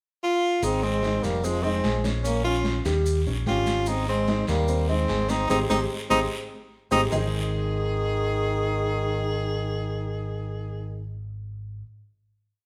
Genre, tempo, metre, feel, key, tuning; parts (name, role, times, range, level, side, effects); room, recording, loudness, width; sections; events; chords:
Afro-Cuban jazz; 148 BPM; 4/4; straight; Ab major; A4 = 441 Hz
bright tenor saxophone; melody; 0.2-11.1 s; Ab3 to Ab4; -29 LUFS; equal
warm trombone; second line; 0.6-11.1 s; Eb3 to Db4; -33 LUFS; equal
warm grand piano; accompaniment; 0.6-11.8 s; G3 to Ab5; -33 LUFS; equal
fingered electric bass; bass; 0.6-11.8 s; F1 to Eb2; -31 LUFS; equal
congas; percussion; 0.6-7.2 s; -35 LUFS; equal
guiro; percussion; 0.6-7.2 s; -41 LUFS; equal
maracas; percussion; 0.6-7.2 s; -44 LUFS; equal
wet large studio reverb, RT60 1.2 s; band playing live in one room; -25 LUFS; mono
0.0-0.6 pickup bar; 0.6-7.1 A section; 7.1-10.4 final chord
band accent 5.5-7.1
0.0 N.C.; 0.6 Ab; 1.4 Fm7; 2.2 Bbm; 3.1 Eb7; 3.9 Abmaj7